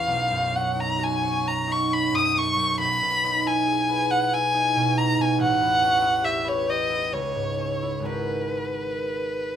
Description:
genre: classical, impressionist duo for violin and harp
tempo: 68 BPM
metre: 3/4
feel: uneven beats, rubato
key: unclear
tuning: A4 = 441 Hz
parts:
  - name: warm violin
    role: melody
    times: 0.0-9.6 s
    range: B4 to D#6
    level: -22 LUFS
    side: left 1 dB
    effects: none
  - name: concert harp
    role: accompaniment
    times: 0.0-9.6 s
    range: G#1 to C#5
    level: -26 LUFS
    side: right 2 dB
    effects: none
room: light reverb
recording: minimal, uncompressed stereo recording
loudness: -21 LUFS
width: side -9 dB against mid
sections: 0.0-9.6 A section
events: none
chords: 0.1 B69; 2.8 Emaj7/B; 5.4 A9; 7.1 C#m; 8.0 G#m9

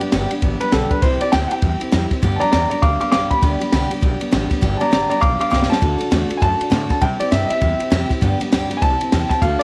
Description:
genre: rockabilly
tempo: 200 BPM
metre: 4/4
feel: swing 61% on 8ths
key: G major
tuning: A4 = 435 Hz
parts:
  - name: warm upright piano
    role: melody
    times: 0.0-9.6 s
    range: B3 to D6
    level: -22 LUFS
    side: equal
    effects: none
  - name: picked steel-string acoustic guitar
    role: accompaniment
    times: 0.0-9.6 s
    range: G2 to A4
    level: -25 LUFS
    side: equal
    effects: none
  - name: upright bass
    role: bass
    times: 0.0-9.6 s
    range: G1 to C3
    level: -24 LUFS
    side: equal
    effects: none
  - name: compact cocktail drum kit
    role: drums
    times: 0.0-9.6 s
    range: kick drum, ride cymbal, snare drum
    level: -22 LUFS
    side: equal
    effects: none
room: light reverb, small room ambience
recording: none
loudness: -18 LUFS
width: mono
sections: 0.0-9.6 A section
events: drum fill 5.5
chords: 0.0 G; 1.0 C; 2.2 G; 5.8 D; 7.0 C; 8.2 G; 8.8 C

